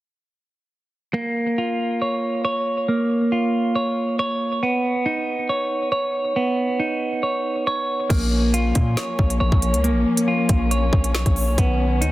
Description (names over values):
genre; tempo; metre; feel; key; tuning
hip hop, drill; 138 BPM; 4/4; half-time; Bb phrygian; A4 = 441 Hz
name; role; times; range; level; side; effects
clean electric guitar; arpeggios; 1.1-12.1 s; Bb3 to Db5; -21 LUFS; right 1 dB; spring reverb, digital delay
dark studio string section; sustained chords; 8.1-12.1 s; D#3 to Db4; -27 LUFS; left 4 dB; none
hard-hitting 808-style bass; bass; 8.1-12.1 s; Bb1 to Bb2; -21 LUFS; equal; none
drill drum kit; drums; 8.1-12.1 s; crash cymbal, hi-hat, kick drum, snare drum; -21 LUFS; equal; none
room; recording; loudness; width
little or no reverb; dense, heavily limited modern master; -19 LUFS; side -16 dB against mid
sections
1.1-8.1 A section; 8.1-12.1 B section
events
none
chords
1.1 Bbm; 4.6 Badd9; 8.1 Bbm; 11.6 Badd9